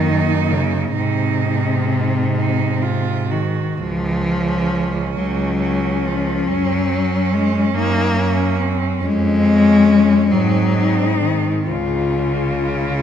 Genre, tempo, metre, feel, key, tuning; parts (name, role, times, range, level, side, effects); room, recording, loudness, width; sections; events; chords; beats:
classical, lyrical piece for cello ensemble; 42-48 BPM (dotted quarters); 6/8; rubato; Db major; A4 = 440 Hz
warm cello; melody; 0.0-13.0 s; Bb3 to F4; -23 LUFS; left 8 dB
rich cello; second line; 0.0-13.0 s; C4 to Gb4; -26 LUFS; right 11 dB
rich cello; accompaniment; 0.0-13.0 s; C3 to Bb3; -18 LUFS; left 2 dB
warm cello; bass; 0.0-12.9 s; Db2 to Ab2; -21 LUFS; right 3 dB
light reverb; close, detailed microphones; -15 LUFS; side -9 dB against mid
0.0-13.0 A section
0.0 Ebm/Gb; 0.9 Ab; 3.8 Db; 6.5 Gb; 9.0 Db/F; 10.3 Ab7; 11.7 Db
| 0.95 2.35 | 3.77 5.15 | 6.48 7.74 | 9.01 10.30 | 11.69